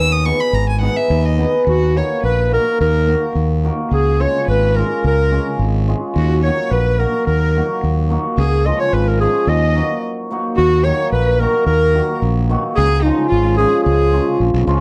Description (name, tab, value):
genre	balkan folk, Balkan wedding band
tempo	108 BPM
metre	2/4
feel	straight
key	Eb minor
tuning	A4 = 440 Hz
part	rich violin	second line	0.0-14.4 s	Eb4 to E6	-28 LUFS	equal	none
part	fuzz fingered electric bass	bass	0.0-14.8 s	G#1 to D#2	-19 LUFS	equal	overdrive
part	cimbalom	accompaniment	0.3-14.8 s	Db3 to B4	-23 LUFS	equal	none
part	warm clarinet	melody	1.7-14.4 s	Eb4 to Eb5	-20 LUFS	equal	none
room	light reverb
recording	dry, close 1970s-style studio recording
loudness	-16 LUFS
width	mono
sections	0.0-1.7 A section; 1.7-10.6 B section; 10.6-14.8 B section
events	speeding up 0.0-14.8; violin solo 0.0-1.7; break 10.0-10.6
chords	0.0 G#m; 1.7 Ebm; 3.9 Db; 6.2 Ebm; 8.4 Db; 9.5 Ebm; 12.8 Db